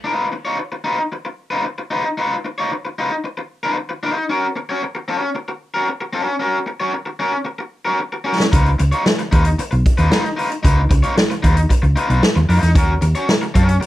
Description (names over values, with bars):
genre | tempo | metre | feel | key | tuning
funk | 113 BPM | 4/4 | straight | unclear | A4 = 445 Hz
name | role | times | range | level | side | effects
raw garage guitar | accompaniment | 0.0-13.8 s | C#4 to C#5 | -20 LUFS | left 1 dB | overdrive
swinging big-band drum kit | drums | 8.4-13.9 s | hi-hat, kick drum, snare drum | -16 LUFS | equal | none
hollow-body short-scale fingered electric bass | bass | 8.5-13.8 s | B1 to F#2 | -15 LUFS | equal | none
room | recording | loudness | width
light reverb | dark, warm production | -16 LUFS | side -15 dB against mid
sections
0.1-13.9 A section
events
drum fill 7.5-8.5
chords
0.1 C#9 (rootless); 4.3 F#/C#; 8.5 C#9; 12.8 D#m7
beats
| 0.06 0.59 1.12 1.65 | 2.18 2.71 3.24 3.77 | 4.29 4.82 5.35 5.88 | 6.41 6.94 7.47 8.00 | 8.53 9.06 9.59 10.12 | 10.64 11.17 11.70 12.23 | 12.76 13.29 13.82